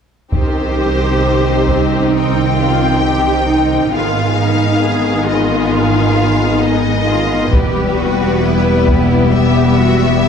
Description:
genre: cinematic, epic orchestral film score.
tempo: 67 BPM.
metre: 4/4.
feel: straight.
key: C harmonic minor.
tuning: A4 = 440 Hz.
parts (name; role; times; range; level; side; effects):
rich symphonic violin section; melody; 0.3-10.3 s; B4 to G5; -19 LUFS; left 4 dB; none.
warm symphonic violin section; second line; 0.3-10.3 s; Eb4 to Ab4; -22 LUFS; left 3 dB; none.
rich symphonic viola section; accompaniment; 0.3-10.3 s; Eb3 to C4; -20 LUFS; equal; none.
mellow French horn section; sustained chords; 0.3-10.3 s; G3 to Eb4; -18 LUFS; left 4 dB; none.
dark symphonic double bass section; bass; 0.3-10.3 s; E1 to C2; -17 LUFS; right 4 dB; none.
warm symphonic cello section; bass; 0.3-10.3 s; Eb4 to Ab4; -21 LUFS; right 2 dB; none.
taiko ensemble; drums; 0.3-2.1, 7.5-9.3 s; none; -18 LUFS; equal; none.
room: moderate scoring stage reverb, RT60 1.9 s.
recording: dark, warm production, faint mains hum.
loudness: -11 LUFS.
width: side -7 dB against mid.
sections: 0.3-10.3 A section.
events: none.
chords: 0.3 Cm; 3.9 Abm; 7.5 Em.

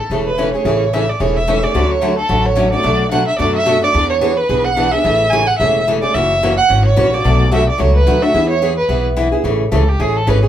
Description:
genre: acoustic string swing (jazz manouche).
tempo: 218 BPM.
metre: 4/4.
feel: swing 57% on 8ths.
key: A major.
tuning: A4 = 440 Hz.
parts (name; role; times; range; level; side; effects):
warm violin; melody; 0.0-10.5 s; G4 to G#5; -16 LUFS; right 2 dB; none.
picked steel-string acoustic guitar; accompaniment; 0.1-10.5 s; B2 to G#4; -17 LUFS; left 1 dB; none.
upright bass; bass; 0.1-10.5 s; E1 to F#2; -18 LUFS; equal; none.
room: moderate large studio reverb, RT60 0.9 s.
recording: band playing live in one room.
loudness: -12 LUFS.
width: side -10 dB against mid.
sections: 0.6-9.4 A section; 9.4-10.5 B section.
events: violin solo 9.4-10.5.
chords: 0.0 Amaj7; 1.7 Dmaj7; 2.8 Bm7; 3.9 E7; 5.0 Amaj7; 6.1 F#7; 7.2 Bm7; 8.3 E; 9.4 Amaj7.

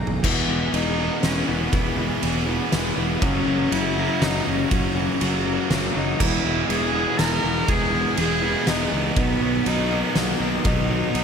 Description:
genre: post-rock.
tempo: 121 BPM.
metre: 3/4.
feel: straight.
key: E lydian.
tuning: A4 = 436 Hz.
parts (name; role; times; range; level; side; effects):
icy glass pad; sustained chords; 0.0-11.2 s; F#4 to B5; -37 LUFS; equal; chorus, built-in reverb.
twangy electric guitar; arpeggios; 0.0-11.2 s; F#2 to D#4; -31 LUFS; left 2 dB; none.
fuzz fingered electric bass; bass; 0.0-11.2 s; E1 to C#2; -28 LUFS; equal; overdrive.
oversized low-tuned drum kit; drums; 0.1-11.2 s; crash cymbal, kick drum, ride cymbal, snare drum, toms; -25 LUFS; right 1 dB; none.
warm cello; melody; 0.2-11.2 s; A#3 to A#4; -26 LUFS; equal; slapback echo, digital delay.
distorted electric guitar; riff; 0.2-11.2 s; B2 to G#4; -28 LUFS; right 10 dB; distortion, slapback echo.
raw garage guitar; riff; 0.2-11.2 s; E2 to B3; -28 LUFS; left 11 dB; overdrive, slapback echo.
room: moderate lush hall reverb, RT60 1.9 s, studio reverb.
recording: big arena sound.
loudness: -19 LUFS.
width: side -6 dB against mid.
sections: 0.2-11.2 A section.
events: drum fill 0.0.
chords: 0.2 Emaj7; 3.2 F#7; 6.2 Emaj7; 9.2 Bmaj7.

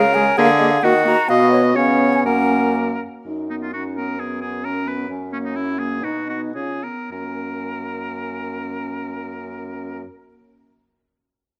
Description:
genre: quick classical-period movement for wind quintet.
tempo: 103-134 BPM.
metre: 2/4.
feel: rubato.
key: F# major.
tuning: A4 = 440 Hz.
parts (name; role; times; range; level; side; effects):
mellow hollow concert flute; melody; 0.0-2.8 s; C#5 to A#5; -23 LUFS; equal; none.
clear oboe; second line; 0.0-10.0 s; C#4 to D#5; -26 LUFS; equal; none.
mellow clarinet; accompaniment; 0.0-10.0 s; A#3 to G#4; -28 LUFS; equal; none.
warm French horn; accompaniment; 0.0-10.0 s; G#3 to E#4; -27 LUFS; equal; none.
warm bassoon; bass; 0.0-10.0 s; F#2 to D#3; -27 LUFS; equal; none.
room: moderate recital hall reverb, RT60 1.7 s.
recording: close, detailed microphones.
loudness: -20 LUFS.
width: mono.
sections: 0.0-3.3 A section; 3.3-7.1 B section; 7.1-9.3 C section.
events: slowing down 4.6-7.1.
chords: 0.4 A#7/D; 0.8 D#m; 1.3 B; 1.8 C#7; 2.3 F#; 3.3 B/F#; 4.2 F#add11; 5.1 F#; 6.0 B; 6.5 C#7; 7.1 F#.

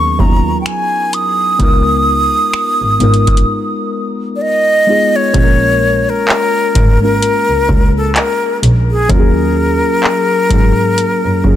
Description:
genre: contemporary R&B.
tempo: 64 BPM.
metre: 4/4.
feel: swing 58% on 16ths.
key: unclear.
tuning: A4 = 440 Hz.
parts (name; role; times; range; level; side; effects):
breathy concert flute; melody; 0.0-11.6 s; Ab4 to D#6; -14 LUFS; left 1 dB; ping-pong delay.
muted felt-like synth keys; accompaniment; 0.0-11.6 s; F#3 to Bb4; -17 LUFS; left 1 dB; chorus.
rich double bass; bass; 0.0-11.6 s; Ab1 to Ab2; -15 LUFS; equal; none.
booming analog drum machine; drums; 0.2-11.6 s; finger snaps, handclaps, hi-hat, kick drum; -13 LUFS; equal; soft clipping on snare.
room: light reverb.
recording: dense, heavily limited modern master.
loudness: -10 LUFS.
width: side -12 dB against mid.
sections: 0.0-5.3 A section; 5.3-11.6 B section.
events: break 3.5-5.3.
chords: 0.0 Bmaj9/D#; 1.6 Db13; 5.3 Bbm7; 9.1 Ebm11.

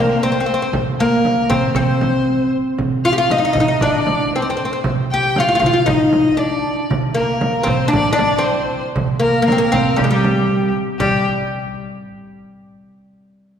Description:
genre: Arabic maqam ensemble.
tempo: 117 BPM.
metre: 4/4.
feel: straight.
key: unclear.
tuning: A4 = 440 Hz.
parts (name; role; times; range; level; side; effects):
oud; melody; 0.0-11.2 s; G3 to G4; -17 LUFS; equal; none.
rich violin; second line; 0.0-11.2 s; G4 to G5; -22 LUFS; left 2 dB; none.
darbuka; percussion; 0.4-11.2 s; none; -23 LUFS; right 3 dB; none.
frame drum; percussion; 0.7-11.2 s; none; -24 LUFS; right 1 dB; none.
room: wet concert hall reverb, RT60 2.2 s.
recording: recorded in a church or concert hall.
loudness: -14 LUFS.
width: side -8 dB against mid.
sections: 0.0-11.0 A section; 11.0-13.1 B section.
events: none.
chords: none.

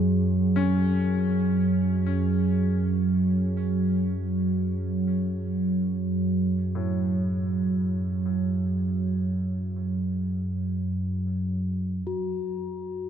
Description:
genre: dark ambient drone.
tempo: free time.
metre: none.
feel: none.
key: F# minor.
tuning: A4 = 440 Hz.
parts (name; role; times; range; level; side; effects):
clear grand piano; arpeggios; 0.0-12.8 s; A2 to C#4; -36 LUFS; left 7 dB; ping-pong delay.
deep rumbling drone; drone; 0.0-13.1 s; F#2 to F#3; -24 LUFS; right 1 dB; built-in reverb.
bronze singing bowl; texture; 0.0-13.1 s; F#4 to G#4; -38 LUFS; left 6 dB; none.
room: moderate huge ambient reverb, RT60 8.6 s.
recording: none.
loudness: -24 LUFS.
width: side -8 dB against mid.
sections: 0.0-12.1 A section; 12.1-13.1 B section.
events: fade-out on grand piano 0.0-12.1.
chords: 0.0 F#madd9; 12.1 F#m.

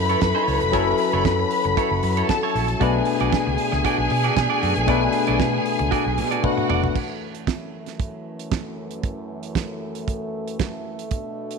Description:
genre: disco.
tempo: 116 BPM.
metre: 4/4.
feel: straight.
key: F# minor.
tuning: A4 = 438 Hz.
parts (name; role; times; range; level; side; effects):
warm studio string section; second line; 0.0-6.9 s; F#4 to B5; -23 LUFS; left 1 dB; none.
barky tine electric piano; accompaniment; 0.0-7.0 s; B2 to B4; -25 LUFS; left 12 dB; none.
mellow French horn section; sustained chords; 0.0-11.6 s; F#2 to A4; -30 LUFS; left 1 dB; none.
fingered electric bass; bass; 0.0-6.9 s; E#1 to B2; -24 LUFS; right 1 dB; none.
clean electric guitar; accompaniment; 0.1-6.9 s; E4 to D5; -28 LUFS; right 14 dB; spring reverb.
damped 70s drum kit; drums; 0.1-11.6 s; crash cymbal, hi-hat, kick drum, snare drum, toms; -27 LUFS; right 5 dB; none.
room: moderate echo chamber reverb, RT60 1.8 s, small room ambience.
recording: 1960s-style stereo with parts hard left and right.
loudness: -20 LUFS.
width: side -5 dB against mid.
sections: 0.0-7.0 A section; 7.0-11.6 B section.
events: drum fill 6.4-7.0.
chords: 0.0 F#m7; 2.8 Bm7; 7.0 F#m7.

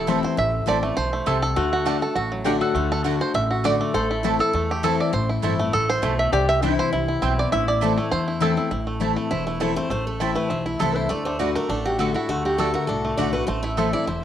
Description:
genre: bluegrass.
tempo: 202 BPM.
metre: 4/4.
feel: swing 53% on 8ths.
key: A dorian.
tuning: A4 = 440 Hz.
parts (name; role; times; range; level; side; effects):
bluegrass banjo; melody; 0.0-14.2 s; F#3 to E5; -24 LUFS; right 2 dB; cassette tape.
lap resonator guitar; second line; 0.0-8.7 s; C4 to A4; -28 LUFS; left 6 dB; none.
picked steel-string acoustic guitar; accompaniment; 0.0-14.2 s; E2 to F#4; -25 LUFS; left 6 dB; none.
upright bass; bass; 0.0-14.2 s; E1 to E2; -29 LUFS; right 1 dB; none.
mandolin; stabs; 0.1-13.9 s; A3 to A5; -30 LUFS; right 9 dB; none.
picked steel-string acoustic guitar; melody; 9.3-14.2 s; E4 to D5; -28 LUFS; equal; cassette tape.
room: moderate spring reverb, RT60 1.5 s.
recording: home recording on cassette.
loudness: -20 LUFS.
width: side -10 dB against mid.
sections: 0.0-8.7 A section; 8.7-14.2 B section.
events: five-string banjo solo 0.0-8.7.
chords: 0.0 Am; 1.6 D; 3.9 Am; 6.3 C; 7.5 Am; 11.1 D; 13.5 Am.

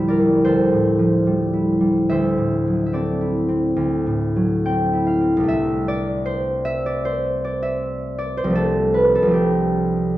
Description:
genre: classical, solo harp piece.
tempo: 66-80 BPM.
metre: 4/4.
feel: rubato.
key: C mixolydian.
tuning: A4 = 437 Hz.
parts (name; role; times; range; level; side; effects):
concert harp; solo; 0.0-10.2 s; C2 to G5; -17 LUFS; equal; none.
room: wet recital hall reverb, RT60 1.4 s.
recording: dark, warm production.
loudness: -17 LUFS.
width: side -15 dB against mid.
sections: 0.0-5.5 A section; 5.5-10.2 B section.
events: none.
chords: 0.0 Dm11; 2.1 D9; 5.5 C69; 8.6 G9/C.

